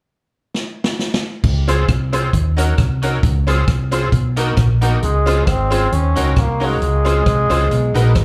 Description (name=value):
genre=ska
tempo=134 BPM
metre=4/4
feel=swing 54% on 8ths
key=Db major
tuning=A4 = 440 Hz
part: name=swinging big-band drum kit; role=drums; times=0.5-8.2 s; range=crash cymbal, hi-hat, kick drum, rim click, snare drum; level=-22 LUFS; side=equal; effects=none
part: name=fingered electric bass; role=bass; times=1.4-8.2 s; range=Ab1 to Eb2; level=-19 LUFS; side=equal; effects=none
part: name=electric guitar at the edge of break-up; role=accompaniment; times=1.7-8.1 s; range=Bb3 to Bb4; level=-28 LUFS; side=equal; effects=ensemble chorus, slapback echo
part: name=tack piano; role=stabs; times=1.7-8.2 s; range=Cb4 to Db5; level=-26 LUFS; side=equal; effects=none
part: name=bright trombone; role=melody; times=5.0-8.2 s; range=Ab3 to Db4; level=-21 LUFS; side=equal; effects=dub echo
room=light reverb, small room ambience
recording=live gig heard through the venue's PA, club reverb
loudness=-17 LUFS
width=mono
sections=0.0-1.4 A section; 1.4-5.0 B section; 5.0-8.2 C section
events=drum fill 0.5-1.4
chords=0.0 N.C.; 1.4 Dbmaj7; 2.3 Ebm7; 3.2 Dbmaj7; 4.1 Cbmaj7; 5.0 Dbmaj7; 5.9 Ebm7; 6.8 Dbmaj7; 7.7 Cbmaj7